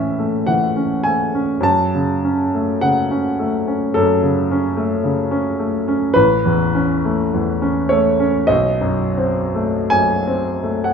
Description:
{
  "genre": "classical, romantic nocturne for solo piano",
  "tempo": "39-56 BPM",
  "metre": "4/4",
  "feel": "rubato",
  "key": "unclear",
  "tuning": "A4 = 442 Hz",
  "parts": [
    { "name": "clear grand piano", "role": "solo", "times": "0.0-10.9 s", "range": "A1 to A5", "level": "-15 LUFS", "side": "equal", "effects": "none" }
  ],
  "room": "moderate recital hall reverb, RT60 1.6 s",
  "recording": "none",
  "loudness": "-15 LUFS",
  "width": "side -6 dB against mid",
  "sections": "0.0-10.9 A section",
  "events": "none",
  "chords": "0.0 A; 1.6 F#m; 6.2 Aadd9; 8.5 B7b9"
}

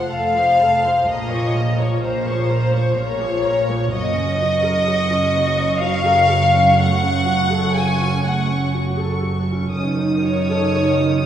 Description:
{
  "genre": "classical, slow romantic movement for string orchestra",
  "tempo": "62 BPM",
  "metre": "3/4",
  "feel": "rubato",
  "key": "Bb minor",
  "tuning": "A4 = 440 Hz",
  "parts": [
    { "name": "warm studio violin section", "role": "melody", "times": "0.0-11.3 s", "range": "A5 to Eb6", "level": "-30 LUFS", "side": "left 2 dB", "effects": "none" },
    { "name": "rich studio violin section", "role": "second line", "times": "0.0-11.2 s", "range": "C5 to Ab5", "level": "-18 LUFS", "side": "left 2 dB", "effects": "none" },
    { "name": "dark studio viola section", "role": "accompaniment", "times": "0.0-11.3 s", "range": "Eb3 to Db5", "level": "-24 LUFS", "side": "right 1 dB", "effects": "none" },
    { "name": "warm studio cello section", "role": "bass", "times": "0.1-11.3 s", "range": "F2 to Bb2", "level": "-25 LUFS", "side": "right 3 dB", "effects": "none" },
    { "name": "warm studio double bass section", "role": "bass", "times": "0.1-11.3 s", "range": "F1 to Bb1", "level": "-23 LUFS", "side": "right 3 dB", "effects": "none" }
  ],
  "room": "wet church reverb, RT60 3.3 s",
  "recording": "recorded in a church or concert hall, small room ambience",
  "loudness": "-16 LUFS",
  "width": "side -10 dB against mid",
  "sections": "0.0-11.3 A section",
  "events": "none",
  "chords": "0.0 F; 1.1 Bbm; 3.9 Gb; 6.8 Gbm; 9.7 Ebm7b5/Gb"
}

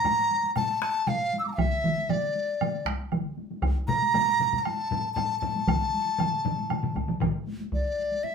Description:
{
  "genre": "japanese traditional, taiko drum ensemble",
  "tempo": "117 BPM",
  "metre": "4/4",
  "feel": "straight",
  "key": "A miyako bushi",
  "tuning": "A4 = 440 Hz",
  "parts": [
    { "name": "large dizi", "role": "melody", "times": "0.0-8.3 s", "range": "D5 to E6", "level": "-26 LUFS", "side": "equal", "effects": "none" },
    { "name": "taiko ensemble", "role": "percussion", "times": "0.0-7.3 s", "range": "none", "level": "-32 LUFS", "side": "left 5 dB", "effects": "none" },
    { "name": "taiko ensemble", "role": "percussion", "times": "0.1-8.3 s", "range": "none", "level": "-35 LUFS", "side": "left 2 dB", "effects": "none" },
    { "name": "woodblock", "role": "percussion", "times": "0.1-7.3 s", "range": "none", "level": "-36 LUFS", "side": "right 6 dB", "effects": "none" },
    { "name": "solo taiko drums", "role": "percussion", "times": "1.6-7.8 s", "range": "none", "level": "-30 LUFS", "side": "equal", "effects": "none" },
    { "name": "taiko ensemble", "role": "percussion", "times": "1.6-7.3 s", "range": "none", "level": "-29 LUFS", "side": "right 2 dB", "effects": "none" }
  ],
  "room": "wet studio reverb, RT60 0.5 s",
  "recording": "band playing live in one room",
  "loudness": "-24 LUFS",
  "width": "side -6 dB against mid",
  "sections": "0.0-7.7 A section",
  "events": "none",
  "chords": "none"
}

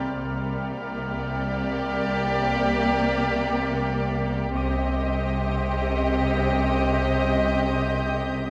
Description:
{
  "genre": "cinematic, suspense film score",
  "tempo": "free time",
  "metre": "none",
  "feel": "none",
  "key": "C minor",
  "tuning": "A4 = 444 Hz",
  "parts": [
    { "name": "muted studio violin section", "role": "melody", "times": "0.0-8.5 s", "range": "D5 to Eb5", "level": "-33 LUFS", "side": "equal", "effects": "none" },
    { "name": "muted chamber violin section", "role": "second line", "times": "0.0-8.5 s", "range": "G4", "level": "-32 LUFS", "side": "equal", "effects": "none" },
    { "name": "muted chamber viola section", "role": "accompaniment", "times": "0.0-8.5 s", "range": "Bb3 to C4", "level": "-32 LUFS", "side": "equal", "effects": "none" },
    { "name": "muted chamber cello section", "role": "bass", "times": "0.0-8.5 s", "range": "C3", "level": "-32 LUFS", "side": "equal", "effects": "none" },
    { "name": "muted symphonic double bass section", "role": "bass", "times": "0.0-8.5 s", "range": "C2", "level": "-31 LUFS", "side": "equal", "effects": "none" },
    { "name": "metallic inharmonic drone", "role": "drone", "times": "0.0-8.5 s", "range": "C2", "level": "-38 LUFS", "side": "equal", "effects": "none" },
    { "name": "concert harp", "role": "texture", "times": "0.0-8.5 s", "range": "C4 to D6", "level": "-46 LUFS", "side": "equal", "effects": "none" },
    { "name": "muted studio violin section", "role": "texture", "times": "0.0-8.5 s", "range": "Bb5 to G6", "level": "-39 LUFS", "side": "equal", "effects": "none" }
  ],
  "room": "wet cathedral reverb, RT60 4.3 s",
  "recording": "recorded in a church or concert hall",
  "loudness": "-24 LUFS",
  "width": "mono",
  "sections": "0.0-8.5 A section",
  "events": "none",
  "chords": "0.0 Gm/C; 4.5 Cm"
}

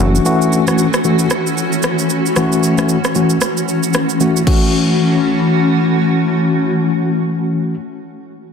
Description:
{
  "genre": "afrobeats",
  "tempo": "114 BPM",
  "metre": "4/4",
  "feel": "swing 58% on 16ths",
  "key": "F# minor",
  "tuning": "A4 = 440 Hz",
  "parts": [
    { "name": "mellow tine electric piano", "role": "accompaniment", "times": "0.0-7.7 s", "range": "E3 to F#4", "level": "-15 LUFS", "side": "left 2 dB", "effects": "medium stereo tremolo" },
    { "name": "granular cloud pad", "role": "sustained chords", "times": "0.0-7.7 s", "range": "E3 to F#4", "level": "-18 LUFS", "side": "equal", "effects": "built-in reverb" },
    { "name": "afro-pop drum kit", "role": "drums", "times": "0.2-4.6 s", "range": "crash cymbal, kick drum, rim click, shaker", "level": "-19 LUFS", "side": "right 1 dB", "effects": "overdrive, soft clipping on snare" }
  ],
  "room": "moderate plate reverb, RT60 1.8 s",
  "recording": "dense, heavily limited modern master",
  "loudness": "-12 LUFS",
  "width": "side -6 dB against mid",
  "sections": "0.0-4.5 A section; 4.5-8.5 B section",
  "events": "none",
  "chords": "0.0 F#m7"
}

